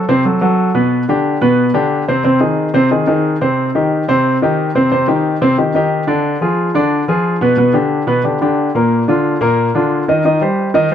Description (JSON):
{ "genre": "latin", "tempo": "180 BPM", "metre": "4/4", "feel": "straight", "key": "C minor", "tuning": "A4 = 440 Hz", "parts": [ { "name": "clear baby grand piano", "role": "solo", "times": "0.0-10.9 s", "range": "Bb2 to Eb5", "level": "-12 LUFS", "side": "equal", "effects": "none" } ], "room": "light reverb", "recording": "none", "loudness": "-12 LUFS", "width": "side -9 dB against mid", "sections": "0.0-10.9 A section", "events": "none", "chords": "0.0 Am69; 0.9 G; 2.3 Ab; 3.6 Cm; 6.2 Ddim; 7.6 G; 8.9 Bb; 10.2 Cm" }